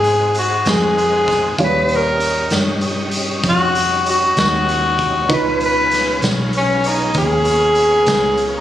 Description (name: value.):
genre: slow blues.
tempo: 65 BPM (dotted quarters).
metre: 12/8.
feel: straight.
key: unclear.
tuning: A4 = 440 Hz.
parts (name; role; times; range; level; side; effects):
bright tenor saxophone; melody; 0.0-8.6 s; Db4 to Cb5; -15 LUFS; left 1 dB; none.
warm grand piano; accompaniment; 0.0-8.6 s; G3 to F5; -23 LUFS; right 3 dB; none.
tonewheel organ; sustained chords; 0.0-8.6 s; G3 to Ab4; -25 LUFS; equal; slow rotary speaker, chorus vibrato.
vintage muted fingered electric bass; bass; 0.0-8.6 s; Cb2 to Ab2; -22 LUFS; equal; none.
raw garage drum kit; drums; 0.0-8.5 s; hi-hat, kick drum, snare drum; -22 LUFS; equal; none.
room: light reverb.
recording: recorded on a phone in the room, club reverb, compression.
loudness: -14 LUFS.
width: side -12 dB against mid.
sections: 0.0-8.6 A section.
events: none.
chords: 0.0 Ab7; 1.6 Eb7; 5.3 Db7.